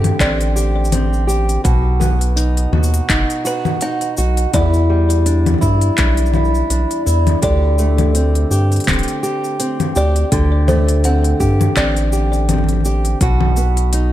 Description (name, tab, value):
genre	folktronica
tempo	83 BPM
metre	4/4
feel	swing 56% on 16ths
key	D mixolydian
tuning	A4 = 439 Hz
part	fingerpicked old ladder-braced acoustic guitar	arpeggios	0.0-14.1 s	E2 to G4	-19 LUFS	equal	ping-pong delay
part	round analog bass	bass	0.0-14.1 s	D1 to G2	-15 LUFS	equal	none
part	organic electronic drum kit	drums	0.0-14.1 s	cabasa, congas, handclaps, hi-hat	-21 LUFS	left 3 dB	none
part	buzzing kalimba	second line	0.2-12.1 s	B4 to F#5	-24 LUFS	equal	ping-pong delay
part	electronic kick drum	drums	0.2-13.4 s	none	-19 LUFS	equal	none
room	little or no reverb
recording	none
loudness	-13 LUFS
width	side -13 dB against mid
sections	0.0-14.1 A section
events	none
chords	0.0 D7sus4; 1.6 B; 4.5 Em7; 7.4 D7sus4; 13.2 B